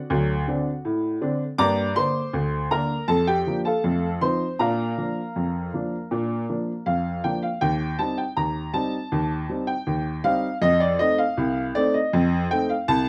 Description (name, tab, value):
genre	ragtime piano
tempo	80 BPM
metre	2/4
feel	straight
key	Bb major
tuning	A4 = 438 Hz
part	clear upright piano	solo	0.0-13.1 s	C2 to D6	-24 LUFS	equal	none
room	moderate studio reverb, RT60 0.5 s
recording	none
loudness	-24 LUFS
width	mono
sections	0.0-7.6 A section; 7.6-13.1 B section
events	none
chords	0.0 D7; 1.6 Gm; 3.1 Bb/F; 3.8 F7; 4.6 Bb; 7.6 Cm/Eb; 10.6 F7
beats	| 0.10 0.85 | 1.59 2.34 | 3.09 3.84 | 4.59 5.35 | 6.11 6.87 | 7.62 8.38 | 9.13 9.88 | 10.63 11.38 | 12.13 12.88